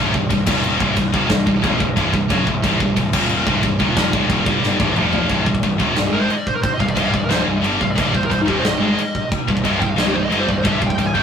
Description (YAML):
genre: heavy metal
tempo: 180 BPM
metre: 4/4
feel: straight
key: C phrygian, C minor from 5.3 s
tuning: A4 = 439 Hz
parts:
  - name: heavy high-gain guitar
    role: riff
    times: 0.0-11.2 s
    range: C2 to Ab3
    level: -21 LUFS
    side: left 4 dB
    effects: distortion
  - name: heavy high-gain guitar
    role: riff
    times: 0.0-11.2 s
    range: C2 to Ab3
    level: -24 LUFS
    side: right 7 dB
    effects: distortion
  - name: fuzz picked electric bass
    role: bass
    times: 0.0-11.2 s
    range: C1 to Ab1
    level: -22 LUFS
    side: equal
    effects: overdrive
  - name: big rock drum kit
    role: drums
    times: 0.1-11.2 s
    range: crash cymbal, kick drum, snare drum, toms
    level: -20 LUFS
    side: equal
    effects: none
  - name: high-gain lead guitar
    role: melody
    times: 6.1-11.2 s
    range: Eb4 to Ab5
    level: -22 LUFS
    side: right 1 dB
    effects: distortion
room: moderate small room reverb, RT60 0.5 s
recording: rough rehearsal-room recording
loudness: -15 LUFS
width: side -7 dB against mid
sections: 0.0-5.3 A section; 5.3-11.2 B section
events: half time 0.0-5.3; drum fill 4.6-5.3; lead electric guitar solo 5.3-11.2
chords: 0.5 Eb5; 0.8 Cm; 3.1 Eb5; 3.5 Cm; 4.5 G5; 4.8 C5; 5.0 F5; 5.3 Cm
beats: 0.29 0.63 0.96 | 1.29 1.63 1.96 2.30 | 2.63 2.96 3.30 3.63 | 3.96 4.30 4.63 4.97 | 5.30 5.63 5.97 6.30 | 6.64 6.97 7.31 7.64 | 7.97 8.31 8.64 8.98 | 9.31 9.64 9.98 10.31 | 10.65 10.98